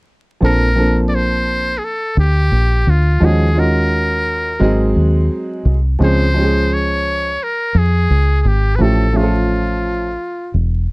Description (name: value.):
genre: hip hop, jazz-hop.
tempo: 86 BPM.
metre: 4/4.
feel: swing 57% on 16ths.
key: unclear.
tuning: A4 = 441 Hz.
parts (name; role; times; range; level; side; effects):
warm grand piano; accompaniment; 0.4-10.1 s; F3 to E5; -17 LUFS; right 1 dB; none.
deep dub fingered electric bass; bass; 0.4-10.9 s; E1 to F2; -15 LUFS; equal; none.
trumpet with metal mute; melody; 0.5-10.6 s; F4 to D5; -19 LUFS; equal; none.
room: little or no reverb.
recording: dry, close 1970s-style studio recording, vinyl crackle.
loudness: -13 LUFS.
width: side -26 dB against mid.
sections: 0.4-10.9 A section.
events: none.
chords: 0.4 Bbmaj9; 3.2 Ebm11; 4.6 Ab7; 6.0 Dbmaj7; 8.8 A(b13).